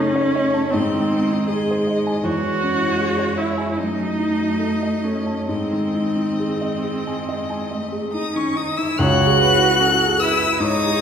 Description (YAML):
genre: classical, slow romantic movement for piano quartet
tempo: 65-81 BPM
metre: 4/4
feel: rubato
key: C# minor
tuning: A4 = 440 Hz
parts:
  - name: rich violin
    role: melody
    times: 0.0-11.0 s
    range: C#5 to F#6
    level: -24 LUFS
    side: left 5 dB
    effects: none
  - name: clear cello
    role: second line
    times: 0.0-11.0 s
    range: G#3 to F#4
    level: -24 LUFS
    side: right 4 dB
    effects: none
  - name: dark baby grand piano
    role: accompaniment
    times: 0.0-11.0 s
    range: C#2 to A5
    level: -22 LUFS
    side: left 1 dB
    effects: none
  - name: rich viola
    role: accompaniment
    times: 0.0-11.0 s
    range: B#3 to C#5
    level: -24 LUFS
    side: right 2 dB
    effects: none
room: wet recital hall reverb, RT60 1.5 s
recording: heard from further back in the room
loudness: -17 LUFS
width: side -8 dB against mid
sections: 0.0-9.0 A section; 9.0-11.0 B section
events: none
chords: 0.0 D#m7b5/F#; 0.7 G#; 2.3 C#m/E; 3.8 D#dim/F#; 5.5 G#; 9.0 C#m